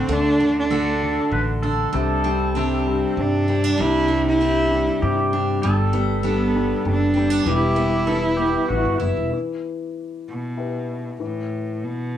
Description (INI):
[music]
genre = acoustic folk-pop ballad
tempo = 97 BPM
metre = 3/4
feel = straight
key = E minor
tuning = A4 = 440 Hz
[part]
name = rich cello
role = melody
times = 0.0-12.2 s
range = A2 to E4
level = -22 LUFS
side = right 1 dB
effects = cassette tape
[part]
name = pedal steel guitar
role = second line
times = 0.0-9.3 s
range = E4 to B4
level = -27 LUFS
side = right 1 dB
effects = cassette tape
[part]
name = warm upright piano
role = accompaniment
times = 0.0-12.2 s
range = C3 to B4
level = -25 LUFS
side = left 7 dB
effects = cassette tape
[part]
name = picked steel-string acoustic guitar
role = arpeggios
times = 0.0-9.4 s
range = G3 to A4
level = -26 LUFS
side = right 6 dB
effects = cassette tape
[part]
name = upright bass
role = bass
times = 0.1-9.3 s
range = E1 to G2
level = -25 LUFS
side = equal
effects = none
[sound]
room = wet small room reverb, RT60 0.5 s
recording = home recording on cassette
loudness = -18 LUFS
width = side -10 dB against mid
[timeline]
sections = 0.0-9.3 A section; 9.3-12.2 B section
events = none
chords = 0.0 D; 1.9 Csus2; 5.6 Gadd9; 7.5 Em; 11.2 A5